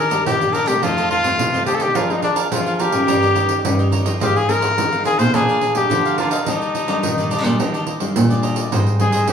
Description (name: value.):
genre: samba and choro.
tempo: 106 BPM.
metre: 4/4.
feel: straight.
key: Eb major.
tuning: A4 = 440 Hz.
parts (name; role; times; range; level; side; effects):
clear trumpet; melody; 0.0-9.3 s; D4 to C5; -18 LUFS; left 2 dB; none.
cavaquinho; accompaniment; 0.0-9.2 s; D4 to Ab5; -26 LUFS; right 3 dB; none.
nylon-string guitar; accompaniment; 0.0-9.3 s; F2 to Ab4; -22 LUFS; left 1 dB; none.
nylon-string guitar; bass; 0.0-9.3 s; Ab2 to Ab3; -23 LUFS; right 1 dB; none.
pandeiro; percussion; 0.1-9.3 s; none; -25 LUFS; right 5 dB; none.
room: wet stone room reverb, RT60 1.0 s.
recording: band playing live in one room, studio reverb.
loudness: -15 LUFS.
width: side -7 dB against mid.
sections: 0.0-8.7 A section.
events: none.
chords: 0.0 Ebmaj7; 0.8 F7; 2.0 Bb7/F; 3.1 Eb7/G; 4.2 Ab6; 5.3 Bb; 6.5 Ebmaj7; 8.7 Abmaj7.